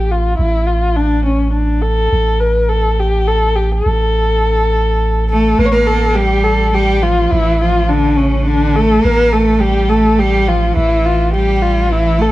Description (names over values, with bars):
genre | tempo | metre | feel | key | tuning
Persian modal ensemble | 104 BPM | 3/4 | straight | A dastgah homayun | A4 = 440 Hz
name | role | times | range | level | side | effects
dark kamancheh | melody | 0.0-12.3 s | C#4 to C#5 | -15 LUFS | left 2 dB | none
punchy sub bass | bass | 0.0-12.3 s | A1 | -16 LUFS | right 1 dB | none
bright cello | second line | 5.3-12.3 s | C#3 to B3-48c | -16 LUFS | right 2 dB | none
room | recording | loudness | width
light reverb | none | -11 LUFS | side -16 dB against mid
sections
0.0-5.6 A section; 5.6-12.3 A section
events
none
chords
none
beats
| 0.39 0.97 1.55 | 2.13 2.71 3.28 | 3.86 4.44 5.01 | 5.59 6.17 6.74 | 7.32 7.89 8.47 | 9.04 9.62 10.19 | 10.77 11.34 11.92